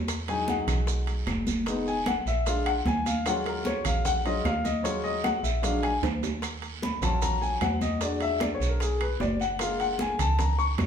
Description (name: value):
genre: Afro-Cuban jazz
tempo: 151 BPM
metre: 4/4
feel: straight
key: Eb minor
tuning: A4 = 440 Hz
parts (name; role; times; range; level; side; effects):
- metallic FM bass; bass; 0.0-10.9 s; F1 to F2; -30 LUFS; right 1 dB; none
- bongos; percussion; 0.1-10.9 s; none; -40 LUFS; left 3 dB; none
- claves; percussion; 0.1-10.9 s; none; -44 LUFS; left 5 dB; none
- congas; percussion; 0.1-10.9 s; none; -32 LUFS; right 1 dB; none
- guiro; percussion; 0.1-10.9 s; none; -42 LUFS; right 7 dB; none
- maracas; percussion; 0.1-10.9 s; none; -40 LUFS; right 7 dB; none
- timbales; percussion; 0.1-10.9 s; none; -37 LUFS; right 7 dB; none
- warm baby grand piano; accompaniment; 0.3-10.7 s; F#3 to Db6; -28 LUFS; left 3 dB; none
room: wet large studio reverb, RT60 0.9 s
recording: band playing live in one room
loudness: -25 LUFS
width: side -8 dB against mid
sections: 0.0-6.4 A section; 6.4-10.9 A section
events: grand piano solo 0.0-10.9; drum fill 6.0-6.4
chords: 0.1 Emaj9; 1.7 Fm7b5; 2.5 Bb7; 3.3 Ebm11; 5.6 Bb7b13; 6.4 Ebm7; 8.0 E9; 9.6 Gbmaj9